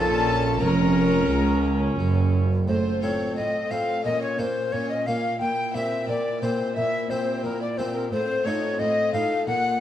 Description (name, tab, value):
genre	classical, baroque-style concerto movement with solo episodes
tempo	88 BPM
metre	4/4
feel	straight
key	Bb minor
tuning	A4 = 440 Hz
part	alto recorder	melody	0.0-9.8 s	A4 to G5	-26 LUFS	left 2 dB	none
part	rich chamber violin section	melody	0.0-9.8 s	Db4 to Bb5	-36 LUFS	left 5 dB	none
part	rich chamber violin section	second line	0.0-9.8 s	A4 to G5	-32 LUFS	left 2 dB	none
part	harpsichord	accompaniment	0.0-9.8 s	Db2 to F4	-29 LUFS	left 1 dB	none
part	rich chamber viola section	accompaniment	0.0-9.8 s	A3 to Eb4	-30 LUFS	right 1 dB	none
part	rich chamber cello section	bass	0.0-9.6 s	Db2 to Bb2	-28 LUFS	right 3 dB	none
part	rich symphonic double bass section	bass	0.0-2.7 s	F1 to Db2	-25 LUFS	right 2 dB	none
room	moderate recital hall reverb, RT60 1.8 s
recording	dark, warm production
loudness	-21 LUFS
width	side -11 dB against mid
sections	0.0-2.7 A section; 2.7-9.8 B section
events	none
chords	0.0 Bbm; 2.7 F/A; 4.0 Bbm; 5.4 C7/Bb; 8.1 F7/A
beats	0.61 1.30 1.99 | 2.68 3.37 4.04 4.72 | 5.40 6.08 6.76 7.44 | 8.12 8.79 9.47